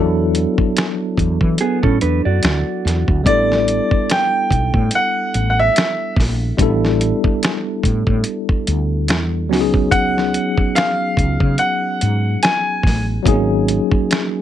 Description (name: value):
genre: R&B, neo-soul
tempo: 72 BPM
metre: 4/4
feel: swing 56% on 16ths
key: unclear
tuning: A4 = 440 Hz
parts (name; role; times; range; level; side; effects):
- tine electric piano; accompaniment; 0.0-14.4 s; F#3 to A4; -20 LUFS; left 2 dB; medium stereo tremolo
- woody fretless electric bass; bass; 0.0-13.9 s; G#1 to E3; -19 LUFS; equal; analog chorus
- dusty soul sampler-style drum kit; drums; 0.3-14.3 s; hi-hat, kick drum, snare drum; -18 LUFS; equal; none
- mellow electric guitar; second line; 1.6-3.2 s; B3 to D5; -20 LUFS; right 5 dB; none
- clear baby grand piano; melody; 3.3-13.0 s; D5 to G#5; -18 LUFS; equal; tape echo
room: light reverb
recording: none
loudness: -14 LUFS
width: side -11 dB against mid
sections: 0.0-14.4 A section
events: none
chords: 0.0 E9sus4; 3.3 A9sus4; 9.5 C#9sus4; 13.3 G#9sus4